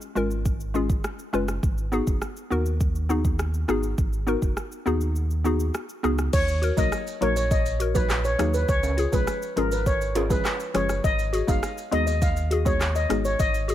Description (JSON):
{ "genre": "dancehall", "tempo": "102 BPM", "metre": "4/4", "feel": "straight", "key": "G# dorian", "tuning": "A4 = 440 Hz", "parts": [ { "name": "afro-pop drum kit", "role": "drums", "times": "0.0-13.7 s", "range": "crash cymbal, handclaps, hi-hat, kick drum, rim click, shaker", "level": "-27 LUFS", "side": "equal", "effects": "none" }, { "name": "hollow square pluck", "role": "accompaniment", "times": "0.2-13.7 s", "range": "E#3 to C#5", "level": "-28 LUFS", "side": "left 2 dB", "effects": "chorus" }, { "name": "sub bass with octave", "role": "bass", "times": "0.2-13.7 s", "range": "F#1 to D#2", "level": "-26 LUFS", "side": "equal", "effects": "none" }, { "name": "steel pan", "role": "melody", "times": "6.3-13.6 s", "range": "A#4 to E#5", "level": "-26 LUFS", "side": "left 1 dB", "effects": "ping-pong delay" }, { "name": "maracas and timbales", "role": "percussion", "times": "6.3-13.7 s", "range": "none", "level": "-38 LUFS", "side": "right 6 dB", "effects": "none" } ], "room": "little or no reverb", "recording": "none", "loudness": "-22 LUFS", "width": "side -12 dB against mid", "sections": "0.0-6.3 A section; 6.3-13.7 B section", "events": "kick muted 5.2-6.3", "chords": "0.0 C#; 1.6 G#m7; 6.3 D#m; 8.7 C#; 11.0 G#m7", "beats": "0.45 1.04 | 1.63 2.22 2.81 3.39 | 3.98 4.57 5.16 5.75 | 6.33 6.92 7.51 8.10 | 8.69 9.28 9.87 10.45 | 11.04 11.63 12.22 12.81 | 13.39" }